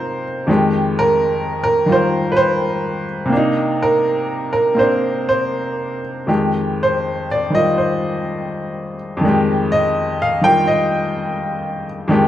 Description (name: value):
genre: solo jazz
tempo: 83 BPM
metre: 4/4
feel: swing 67% on 8ths, uneven beats, rubato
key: unclear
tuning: A4 = 440 Hz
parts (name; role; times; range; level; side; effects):
- bright upright piano; solo; 0.0-12.3 s; F2 to G5; -15 LUFS; equal; none
room: moderate large studio reverb, RT60 1.3 s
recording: dark, warm production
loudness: -15 LUFS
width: side -12 dB against mid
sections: 0.0-12.3 A section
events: upright piano solo 0.0-12.3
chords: 0.5 Fm9; 3.3 Cm9; 6.3 Fm9